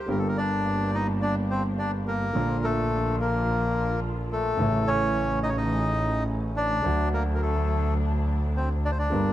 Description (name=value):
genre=tango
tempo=106 BPM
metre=4/4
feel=rubato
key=unclear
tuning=A4 = 440 Hz
part: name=bandoneon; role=melody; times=0.0-9.3 s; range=A3 to Eb5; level=-27 LUFS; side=left 1 dB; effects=none
part: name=warm upright piano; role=accompaniment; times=0.1-9.3 s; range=G1 to Bb4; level=-30 LUFS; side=right 1 dB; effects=none
part: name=muted studio string section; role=stabs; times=0.1-9.3 s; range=E3 to G4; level=-36 LUFS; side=right 1 dB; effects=none
part: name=clear double bass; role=bass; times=0.1-9.3 s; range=G1 to D2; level=-27 LUFS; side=equal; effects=none
room=moderate large studio reverb, RT60 1.3 s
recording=dark, warm production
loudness=-23 LUFS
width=side -13 dB against mid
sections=0.1-9.3 A section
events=none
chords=0.1 Gm; 2.4 Bb; 4.6 A; 6.8 D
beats=| 0.08 0.65 1.22 1.79 | 2.35 2.92 3.47 4.03 | 4.59 5.15 5.71 6.27 | 6.84 7.40 7.97 8.55 | 9.12